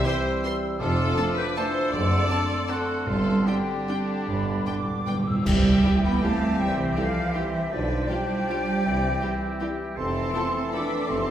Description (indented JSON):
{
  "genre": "classical, orchestral ballroom waltz",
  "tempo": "142-175 BPM",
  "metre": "3/4",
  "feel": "rubato",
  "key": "C major",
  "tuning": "A4 = 440 Hz",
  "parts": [
    { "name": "bright clarinet", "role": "second line", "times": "0.0-11.3 s", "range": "C4 to D5", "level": "-37 LUFS", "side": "left 1 dB", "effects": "none" },
    { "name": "large flute ensemble", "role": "second line", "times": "0.0-11.3 s", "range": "D5 to E6", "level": "-32 LUFS", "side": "left 1 dB", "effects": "none" },
    { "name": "rich chamber violin section", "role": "second line", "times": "0.0-11.3 s", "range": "G4 to B5", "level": "-34 LUFS", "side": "left 2 dB", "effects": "none" },
    { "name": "warm oboe", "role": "second line", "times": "0.0-11.3 s", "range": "D4 to A4", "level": "-34 LUFS", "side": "equal", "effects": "none" },
    { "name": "warm bassoon", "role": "accompaniment", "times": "0.0-11.3 s", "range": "D3 to G3", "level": "-34 LUFS", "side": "right 1 dB", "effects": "none" },
    { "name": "dark trombone section", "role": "sustained chords", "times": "0.0-11.3 s", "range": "D3 to A3", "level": "-35 LUFS", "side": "right 2 dB", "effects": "none" },
    { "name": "mellow French horn section", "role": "sustained chords", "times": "0.0-11.3 s", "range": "A3 to C5", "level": "-35 LUFS", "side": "left 3 dB", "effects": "none" },
    { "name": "rich chamber violin section", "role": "melody", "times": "0.1-10.8 s", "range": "G4 to C6", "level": "-38 LUFS", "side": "left 2 dB", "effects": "none" },
    { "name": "warm chamber viola section", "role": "accompaniment", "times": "0.1-10.8 s", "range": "E3 to G4", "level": "-36 LUFS", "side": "right 1 dB", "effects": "none" },
    { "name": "clear tuba", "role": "bass", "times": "0.8-11.3 s", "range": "F1 to C2", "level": "-34 LUFS", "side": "right 1 dB", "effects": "none" },
    { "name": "rich chamber double bass section", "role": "bass", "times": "0.8-11.3 s", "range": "F1 to C2", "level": "-32 LUFS", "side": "equal", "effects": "none" },
    { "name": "warm chamber cello section", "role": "bass", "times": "0.8-11.3 s", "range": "F2 to D4", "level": "-29 LUFS", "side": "right 2 dB", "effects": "none" },
    { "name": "cymbal swell, clash cymbals and concert bass drum", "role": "percussion", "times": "3.1-6.2 s", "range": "none", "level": "-29 LUFS", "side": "equal", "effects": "none" },
    { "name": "timpani", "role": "percussion", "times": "3.1-5.5 s", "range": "G2", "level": "-26 LUFS", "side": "right 2 dB", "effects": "none" }
  ],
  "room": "wet recital hall reverb, RT60 1.4 s",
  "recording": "recorded in a church or concert hall",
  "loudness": "-22 LUFS",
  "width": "side -10 dB against mid",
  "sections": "0.0-5.5 A section; 5.5-11.3 B section",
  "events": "timpani fill 4.3-5.5; band accent 5.5-5.8",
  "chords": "0.0 C; 0.8 Dm/F; 1.9 D7/F#; 3.1 Gsus4; 4.3 G; 5.5 C; 7.7 G7/B; 8.9 C; 10.0 Fmaj7"
}